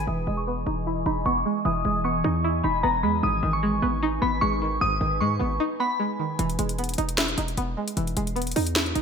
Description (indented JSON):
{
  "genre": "hip hop, trap",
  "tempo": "152 BPM",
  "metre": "4/4",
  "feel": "half-time",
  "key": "unclear",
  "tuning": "A4 = 440 Hz",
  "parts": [
    { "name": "glassy synth bell", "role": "melody", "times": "0.0-6.4 s", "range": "A#5 to D#6", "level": "-27 LUFS", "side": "left 1 dB", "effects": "chorus, tremolo, low-pass filter" },
    { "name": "string-like resonator pluck", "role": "accompaniment", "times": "0.0-9.0 s", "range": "G#2 to E4", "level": "-28 LUFS", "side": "right 2 dB", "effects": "chorus, phaser, low-pass filter" },
    { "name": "glassy FM pad", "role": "sustained chords", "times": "0.0-6.4 s", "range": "E3 to G#5", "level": "-32 LUFS", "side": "equal", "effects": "ensemble chorus, built-in reverb, low-pass filter" },
    { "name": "hard-hitting 808-style bass", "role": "bass", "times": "0.0-9.0 s", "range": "E1 to G#2", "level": "-28 LUFS", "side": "equal", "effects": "none" },
    { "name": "trap drum kit", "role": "drums", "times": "6.4-9.0 s", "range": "hi-hat, snare drum", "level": "-27 LUFS", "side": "equal", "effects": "gated reverb" }
  ],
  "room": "moderate plate reverb, RT60 1.8 s",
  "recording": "bright 1980s-style digital production",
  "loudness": "-22 LUFS",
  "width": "side -6 dB against mid",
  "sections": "0.1-6.4 A section; 6.4-9.0 B section",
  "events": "filter sweep 0.1-6.4; break 5.6-6.4",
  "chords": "0.1 Emaj7; 3.2 G#m; 6.4 Emaj7"
}